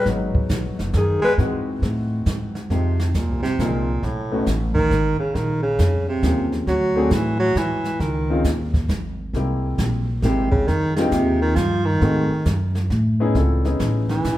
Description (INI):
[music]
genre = jazz, small-group swing and bop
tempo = 136 BPM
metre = 3/4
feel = swing 66% on 8ths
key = F minor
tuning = A4 = 441 Hz
[part]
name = growling alto saxophone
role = melody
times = 0.0-1.3 s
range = G#4 to B4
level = -22 LUFS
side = left 3 dB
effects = none
[part]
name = warm baritone saxophone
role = second line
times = 0.0-14.4 s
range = G2 to G#3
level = -22 LUFS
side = right 2 dB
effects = none
[part]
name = clear grand piano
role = accompaniment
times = 0.1-14.4 s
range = E3 to Bb4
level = -25 LUFS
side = left 2 dB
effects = none
[part]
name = upright bass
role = bass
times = 0.1-14.4 s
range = F#1 to A2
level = -22 LUFS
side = equal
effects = none
[part]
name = jazz brush drum kit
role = drums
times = 0.1-14.4 s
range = brushed snare drum, hi-hat, kick drum, snare drum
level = -26 LUFS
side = equal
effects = none
[sound]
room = wet large studio reverb, RT60 1.3 s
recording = heard from further back in the room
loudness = -18 LUFS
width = side -14 dB against mid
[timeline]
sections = 0.0-2.7 A section; 2.7-13.3 B section; 13.3-14.4 B section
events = baritone saxophone solo 2.7-14.4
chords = 0.1 G#m7; 1.4 G#7b13; 2.7 Fm9; 4.0 B7; 5.3 Bbm9; 6.7 D(#11); 8.0 Dbsus2; 9.3 C7b13; 10.7 Fm9; 12.0 Ab7b9; 13.3 C#m9